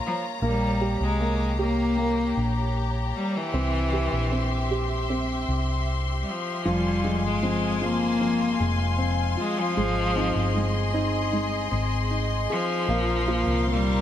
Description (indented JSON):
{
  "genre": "pop",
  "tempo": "77 BPM",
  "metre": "4/4",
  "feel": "straight",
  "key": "F minor",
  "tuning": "A4 = 440 Hz",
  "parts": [
    { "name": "warm baby grand piano", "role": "accompaniment", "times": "0.0-14.0 s", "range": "F3 to G4", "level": "-31 LUFS", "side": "right 2 dB", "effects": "none" },
    { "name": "rich studio string section", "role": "sustained chords", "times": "0.0-14.0 s", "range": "F4 to C6", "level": "-30 LUFS", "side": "left 3 dB", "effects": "none" },
    { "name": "rich cello", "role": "melody", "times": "0.1-14.0 s", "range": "E3 to Bb3", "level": "-27 LUFS", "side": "left 1 dB", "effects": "none" },
    { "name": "hollow-body short-scale fingered electric bass", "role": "bass", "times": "0.4-14.0 s", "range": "F1 to C2", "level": "-27 LUFS", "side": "equal", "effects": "none" },
    { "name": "fingerpicked plugged-in steel-string acoustic guitar", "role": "arpeggios", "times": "6.7-14.0 s", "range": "F2 to Ab4", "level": "-30 LUFS", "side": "left 3 dB", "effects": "none" }
  ],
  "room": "small room ambience",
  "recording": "none",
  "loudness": "-22 LUFS",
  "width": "side -11 dB against mid",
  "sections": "0.0-14.0 A section",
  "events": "none",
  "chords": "0.4 Gdim/Bb; 3.5 C; 6.7 Fm; 9.8 Ab; 12.9 Bbsus2",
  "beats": "| 0.42 1.20 1.98 2.76 | 3.54 4.32 5.10 5.88 | 6.66 7.43 8.21 8.99 | 9.77 10.55 11.33 12.11 | 12.89 13.67"
}